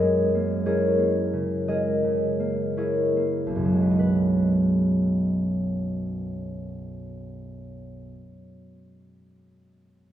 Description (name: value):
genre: classical, solo harp piece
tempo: 47-65 BPM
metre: 4/4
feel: rubato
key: B major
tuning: A4 = 440 Hz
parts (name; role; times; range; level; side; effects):
- concert harp; solo; 0.0-8.6 s; B1 to F#5; -22 LUFS; equal; none
room: wet recital hall reverb, RT60 1.7 s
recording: heard from further back in the room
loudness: -21 LUFS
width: side -11 dB against mid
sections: 0.0-4.0 A section; 4.0-8.7 B section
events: slowing down 0.0-4.0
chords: 0.0 F#13; 4.0 B6